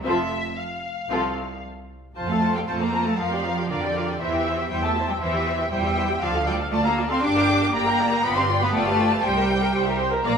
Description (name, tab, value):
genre	quick classical-period movement for string orchestra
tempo	119 BPM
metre	4/4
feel	straight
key	F major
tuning	A4 = 440 Hz
part	rich symphonic violin section	melody	0.0-10.3 s	E5 to A5	-31 LUFS	left 3 dB	none
part	rich symphonic viola section	accompaniment	0.0-10.3 s	F3 to G5	-26 LUFS	right 1 dB	none
part	bright symphonic cello section	bass	0.0-10.4 s	C2 to D4	-26 LUFS	right 1 dB	none
part	clear symphonic double bass section	bass	0.0-10.3 s	F1 to F2	-30 LUFS	right 3 dB	none
part	warm symphonic violin section	second line	0.1-10.4 s	F4 to D6	-26 LUFS	left 2 dB	none
room	moderate recital hall reverb, RT60 1.5 s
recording	minimal, uncompressed stereo recording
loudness	-20 LUFS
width	side -6 dB against mid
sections	0.0-2.2 A section; 2.2-10.4 B section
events	none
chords	0.0 F; 3.2 Gm7/F; 4.2 C/E; 6.2 Dm; 7.2 Gm7; 8.2 G7; 9.2 C7